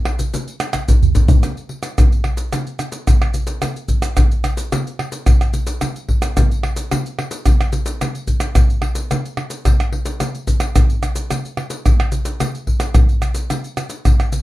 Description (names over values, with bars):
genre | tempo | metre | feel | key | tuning
samba | 109 BPM | 4/4 | straight | none | none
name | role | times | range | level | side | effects
pandeiro, tamborim, maracas and surdo | percussion | 0.1-14.4 s | none | -15 LUFS | equal | none
room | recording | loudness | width
light reverb | none | -16 LUFS | side -16 dB against mid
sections
0.0-1.4 A section; 1.4-14.4 B section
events
drum fill 0.6-1.4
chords
none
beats
0.34 0.88 | 1.43 1.98 2.53 3.08 | 3.62 4.17 4.72 5.27 | 5.82 6.37 6.92 7.47 | 8.01 8.56 9.11 9.66 | 10.21 10.76 11.31 11.86 | 12.40 12.95 13.50 14.05